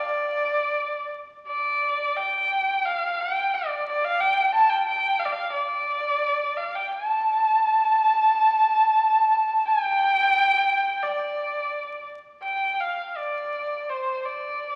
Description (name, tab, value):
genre	chinese traditional, Chinese chamber ensemble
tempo	82-90 BPM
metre	2/4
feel	rubato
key	D yu mode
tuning	A4 = 440 Hz
part	rich erhu	solo	0.0-14.8 s	C5 to A5	-24 LUFS	equal	none
room	wet recital hall reverb, RT60 1.8 s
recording	very old 78 rpm record, vinyl crackle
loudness	-23 LUFS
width	mono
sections	0.0-1.5 A section; 1.5-12.4 B section; 12.4-14.8 C section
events	none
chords	none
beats	| 0.06 0.77 | 1.47 2.17 | 2.85 3.52 | 4.18 4.86 | 5.54 6.22 | 6.93 7.63 | 8.32 9.01 | 9.68 10.35 | 11.02 11.71 | 12.43 13.15 | 13.88 14.60